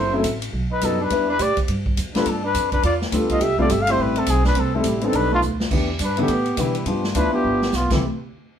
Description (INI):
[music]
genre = jazz, small-group swing and bop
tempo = 208 BPM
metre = 4/4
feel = swing 61% on 8ths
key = unclear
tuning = A4 = 440 Hz
[part]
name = breathy trumpet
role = melody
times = 0.0-8.0 s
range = C4 to F5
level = -23 LUFS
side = left 2 dB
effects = none
[part]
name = breathy alto saxophone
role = second line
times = 0.0-8.0 s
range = E3 to A4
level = -26 LUFS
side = right 4 dB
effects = none
[part]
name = upright bass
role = bass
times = 0.0-8.0 s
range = F#1 to B2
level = -25 LUFS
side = right 1 dB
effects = none
[part]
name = warm upright piano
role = accompaniment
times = 0.1-8.0 s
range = E3 to B4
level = -23 LUFS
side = left 3 dB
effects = none
[part]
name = swinging big-band drum kit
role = drums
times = 0.2-8.0 s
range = crash cymbal, hi-hat, kick drum, ride cymbal, snare drum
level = -26 LUFS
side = equal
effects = none
[sound]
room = moderate studio reverb, RT60 0.7 s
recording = band playing live in one room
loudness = -18 LUFS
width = side -8 dB against mid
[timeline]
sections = 0.0-5.7 A section; 5.7-8.0 B section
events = drum fill 5.4, 7.4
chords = 0.0 F#m7b5; 0.5 B; 1.1 Em7; 2.3 G9; 3.4 C6; 5.1 B7alt; 5.7 Em7; 6.9 G7; 7.9 C6; 8.0 N.C.